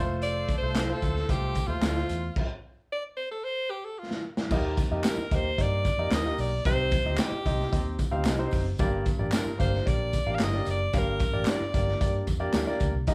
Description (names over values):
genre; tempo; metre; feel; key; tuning
uptempo 1960s-style soul; 112 BPM; 4/4; straight; unclear; A4 = 437 Hz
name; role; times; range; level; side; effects
clear horn section; second line; 0.0-2.1 s; F4 to C5; -44 LUFS; equal; none
warm grand piano; accompaniment; 0.0-13.1 s; G2 to F5; -35 LUFS; equal; none
vintage muted fingered electric bass; bass; 0.0-13.1 s; F1 to G2; -33 LUFS; equal; none
edgy alto saxophone; melody; 0.2-12.3 s; F4 to F5; -34 LUFS; equal; none
crunchy breakbeat drum kit; drums; 0.2-13.1 s; crash cymbal, hi-hat, kick drum, snare drum; -31 LUFS; equal; none
tambourine and handclaps; percussion; 0.2-13.1 s; none; -44 LUFS; equal; none
electric guitar through a small old amp; stabs; 0.8-12.7 s; D4 to F5; -41 LUFS; equal; none
room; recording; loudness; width
moderate large studio reverb, RT60 0.8 s; band playing live in one room; -28 LUFS; mono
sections
0.0-4.5 A section; 4.5-13.1 B section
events
alto saxophone solo 0.0-4.5; stop 2.4-4.5; drum fill 4.0-4.5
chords
0.0 F; 4.5 Eb; 6.7 Cm; 8.8 Gm